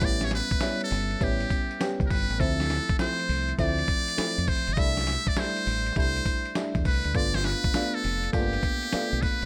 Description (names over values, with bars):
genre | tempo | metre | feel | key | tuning
R&B, new jack swing | 101 BPM | 4/4 | swing 66% on 16ths | D dorian | A4 = 440 Hz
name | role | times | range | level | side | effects
trumpet with metal mute | melody | 0.0-9.5 s | G4 to E5 | -31 LUFS | equal | delay
FM electric piano | accompaniment | 0.0-9.5 s | F3 to G4 | -34 LUFS | equal | chorus, phaser
deep dub fingered electric bass | bass | 0.0-9.5 s | E1 to F2 | -32 LUFS | equal | none
dusty soul sampler-style drum kit | drums | 0.0-9.5 s | hi-hat, kick drum, snare drum, tambourine | -31 LUFS | equal | none
room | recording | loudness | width
digital ambience | none | -27 LUFS | mono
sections
0.0-9.5 A section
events
none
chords
0.0 A7; 2.4 Dm7; 4.8 C6; 7.1 G7